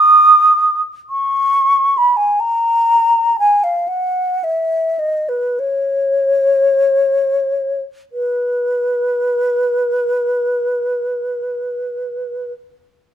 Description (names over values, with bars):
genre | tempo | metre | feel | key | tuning
classical, free, expressive piece for unaccompanied flute | 18-46 BPM (dotted quarters) | 6/8 | rubato | B major | A4 = 436 Hz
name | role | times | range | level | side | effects
mellow hollow concert flute | solo | 0.0-12.5 s | B4 to D#6 | -13 LUFS | equal | none
room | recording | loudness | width
light reverb | none | -14 LUFS | side -9 dB against mid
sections
0.0-8.1 A section; 8.1-11.8 B section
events
slowing down 0.0-8.1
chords
none